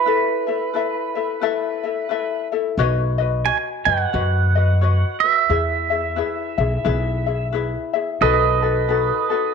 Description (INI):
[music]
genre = Hawaiian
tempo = 88 BPM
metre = 4/4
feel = swing 60% on 8ths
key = unclear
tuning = A4 = 441 Hz
[part]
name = pedal steel guitar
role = melody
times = 0.0-9.5 s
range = B4 to G#5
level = -21 LUFS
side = right 9 dB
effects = slapback echo
[part]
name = ukulele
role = accompaniment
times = 0.0-9.5 s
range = D#4 to E5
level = -22 LUFS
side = left 10 dB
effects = none
[part]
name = upright bass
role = bass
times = 2.8-9.1 s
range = B1 to F#2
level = -20 LUFS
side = equal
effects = none
[sound]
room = moderate echo chamber reverb, RT60 1.6 s, studio reverb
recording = 1960s-style stereo with parts hard left and right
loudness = -18 LUFS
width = side -6 dB against mid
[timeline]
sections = 0.0-8.2 A section; 8.2-9.5 B section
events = none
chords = 0.1 Asus2; 2.8 Badd9; 5.5 E; 8.2 B7